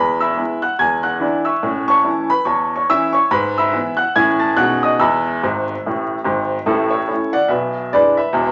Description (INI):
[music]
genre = jazz, stride piano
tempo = 143 BPM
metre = 4/4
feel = swing 59% on 8ths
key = E major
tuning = A4 = 440 Hz
[part]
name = clear upright piano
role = solo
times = 0.0-8.5 s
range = E1 to A6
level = -17 LUFS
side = equal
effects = none
[sound]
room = wet club reverb, RT60 0.8 s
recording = vinyl crackle, nothing above 7.6 kHz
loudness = -17 LUFS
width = mono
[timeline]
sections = 0.0-6.7 A section; 6.7-8.5 B section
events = upright piano fill 5.4-6.7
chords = 0.0 E; 0.8 E7; 1.6 A; 3.3 E/G#; 4.2 A; 4.6 B69; 5.0 E; 6.7 A; 7.5 E7/B